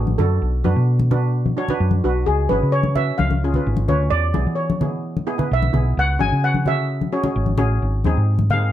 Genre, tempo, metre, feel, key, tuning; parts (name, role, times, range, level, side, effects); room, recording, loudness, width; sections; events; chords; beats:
calypso; 130 BPM; 4/4; straight; A4 = 440 Hz
steel pan; melody; 0.0-8.7 s; F#4 to G#5; -23 LUFS; equal
steel pan; accompaniment; 0.0-8.7 s; B3 to C#5; -26 LUFS; right 1 dB
hollow-body short-scale fingered electric bass; bass; 0.0-8.7 s; G#1 to E3; -19 LUFS; equal
congas; percussion; 0.1-8.6 s; -24 LUFS; left 3 dB
moderate studio reverb, RT60 0.5 s; -17 LUFS; side -12 dB against mid
0.0-8.7 A section
steel pan solo 0.0-8.7
0.4 Bm; 2.3 C#7sus4; 3.2 C#7; 4.1 E7; 6.0 C#sus4; 7.8 G#
| 0.42 0.88 1.35 1.81 | 2.27 2.74 3.20 3.66 | 4.13 4.59 5.05 5.51 | 5.97 6.44 6.90 7.36 | 7.82 8.28